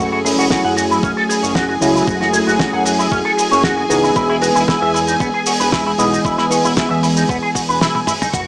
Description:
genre	nu-disco, nu disco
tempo	115 BPM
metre	4/4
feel	straight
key	unclear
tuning	A4 = 440 Hz
part	tine electric piano	accompaniment	0.0-8.0 s	E3 to D#5	-18 LUFS	equal	phaser, sidechain pumping, dub echo
part	clear studio string section	sustained chords	0.0-8.5 s	E3 to C#6	-20 LUFS	equal	sidechain pumping
part	electric guitar with an envelope filter	riff	0.0-8.4 s	B3 to F#5	-19 LUFS	equal	ensemble chorus, dub echo
part	fat analog bass	bass	0.0-8.5 s	E1 to F#2	-22 LUFS	equal	sidechain pumping
part	damped 70s drum kit	drums	0.0-8.5 s	cabasa, hi-hat, snare drum, toms	-21 LUFS	equal	studio reverb
part	electronic kick drum	drums	0.5-8.4 s	none	-23 LUFS	equal	studio reverb
part	cabasa	percussion	8.3-8.4 s	none	-28 LUFS	left 1 dB	none
room	moderate plate reverb, RT60 1.4 s, small room ambience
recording	echo-heavy mix, small speaker sound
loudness	-13 LUFS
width	side -22 dB against mid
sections	0.0-8.5 A section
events	drum fill 7.8-8.3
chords	0.0 F#m7; 4.2 Emaj7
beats	0.51 1.03 1.55 | 2.08 2.60 3.12 3.64 | 4.16 4.68 5.21 5.73 | 6.25 6.77 7.29 7.81 | 8.34

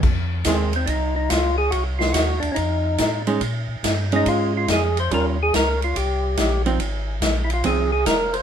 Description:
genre	soul jazz organ trio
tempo	142 BPM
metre	4/4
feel	swing 66% on 8ths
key	F minor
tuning	A4 = 440 Hz
part	tonewheel organ	bass	0.0-8.4 s	F1 to Bb2	-24 LUFS	equal	chorus vibrato, slow rotary speaker
part	swinging big-band drum kit	drums	0.0-8.4 s	crash cymbal, hi-hat, kick drum, ride cymbal, snare drum	-24 LUFS	equal	none
part	archtop guitar, miked and amplified	accompaniment	0.5-0.7, 3.3-7.9 s	Eb3 to F4	-22 LUFS	right 4 dB	none
part	percussive tonewheel organ	melody	0.8-8.4 s	C4 to C5	-22 LUFS	equal	slow rotary speaker, overdrive
room	light reverb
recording	minimal, uncompressed stereo recording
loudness	-18 LUFS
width	side -8 dB against mid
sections	0.0-8.4 A section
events	none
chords	0.0 Fm7; 1.7 Cdim; 2.6 F7b13; 3.4 Bbm7; 5.1 Eb9; 6.8 Ab6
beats	| 0.04 0.46 0.88 1.30 | 1.73 2.15 2.57 3.00 | 3.42 3.84 4.26 4.69 | 5.11 5.53 5.95 6.37 | 6.80 7.22 7.64 8.06

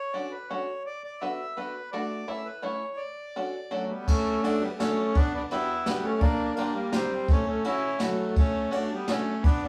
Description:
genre	musette waltz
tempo	167 BPM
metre	3/4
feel	straight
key	D major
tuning	A4 = 440 Hz
part	accordion	melody	0.0-9.7 s	F#3 to E5	-31 LUFS	equal	plate reverb
part	bluegrass banjo	accompaniment	0.1-9.3 s	A3 to B4	-36 LUFS	equal	none
part	jazz brush drum kit	drums	4.1-9.5 s	crash cymbal, kick drum, ride cymbal, snare drum	-29 LUFS	equal	none
room	wet studio reverb, RT60 0.5 s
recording	heard from further back in the room, small room ambience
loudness	-28 LUFS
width	mono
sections	0.0-4.1 A section; 4.1-9.7 A section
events	none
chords	0.0 Dmaj7; 0.9 Bm7; 1.9 D/A; 2.3 A; 3.0 Dmaj7; 5.2 Gmaj7; 6.2 Bb6; 7.3 F#m7/A; 8.4 Dmaj7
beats	0.13 0.49 | 0.86 1.22 1.57 | 1.93 2.29 2.64 | 3.00 3.36 3.72 | 4.08 4.45 4.80 | 5.16 5.52 5.87 | 6.22 6.58 6.94 | 7.29 7.65 8.02 | 8.38 8.74 9.10 | 9.45

